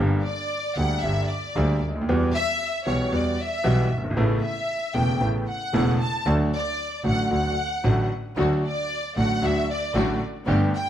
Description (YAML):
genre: tango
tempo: 114 BPM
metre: 4/4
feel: rubato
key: D major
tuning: A4 = 443 Hz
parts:
  - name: bright grand piano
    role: accompaniment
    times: 0.0-10.7 s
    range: E1 to G4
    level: -24 LUFS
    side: equal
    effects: none
  - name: clear double bass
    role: bass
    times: 0.0-10.7 s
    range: E1 to E2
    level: -26 LUFS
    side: right 1 dB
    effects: none
  - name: warm studio violin section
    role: second line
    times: 0.2-10.9 s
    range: C#5 to A5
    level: -27 LUFS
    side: left 1 dB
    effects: none
  - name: warm studio string section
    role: stabs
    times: 8.4-10.7 s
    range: A3 to G4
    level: -32 LUFS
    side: left 1 dB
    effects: none
room: moderate large studio reverb, RT60 1.2 s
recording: vinyl crackle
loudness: -21 LUFS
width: side -10 dB against mid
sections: 0.0-10.9 A section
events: violin section solo 0.0-10.9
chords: 0.0 Gm; 2.1 Emadd9; 4.2 Aadd9; 6.3 D